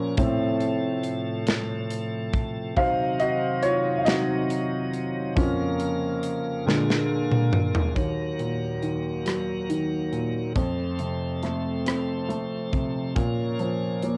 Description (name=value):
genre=six-eight pop ballad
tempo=46 BPM (dotted quarters)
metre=6/8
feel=straight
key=Bb harmonic minor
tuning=A4 = 443 Hz
part: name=warm baby grand piano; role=accompaniment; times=0.0-14.2 s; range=Eb2 to F5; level=-28 LUFS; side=equal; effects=cassette tape
part: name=tonewheel organ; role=sustained chords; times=0.0-14.2 s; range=F2 to F5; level=-34 LUFS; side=equal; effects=overdrive, slow rotary speaker, cassette tape
part: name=modern studio drum kit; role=drums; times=0.2-14.2 s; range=hi-hat, kick drum, rim click, snare drum, toms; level=-29 LUFS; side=equal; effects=none
room=moderate studio reverb, RT60 0.6 s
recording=home recording on cassette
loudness=-26 LUFS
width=mono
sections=0.0-8.0 A section; 8.0-14.2 B section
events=grand piano solo 0.0-8.0; drum fill 6.7-8.0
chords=0.2 F/A; 2.8 Cdim; 5.4 Bbm/F; 6.7 Bb7; 8.0 Ebm; 10.6 F; 13.2 Bbm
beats=| 0.18 1.48 | 2.77 4.07 | 5.36 6.66 | 7.96 9.26 | 10.56 11.86 | 13.16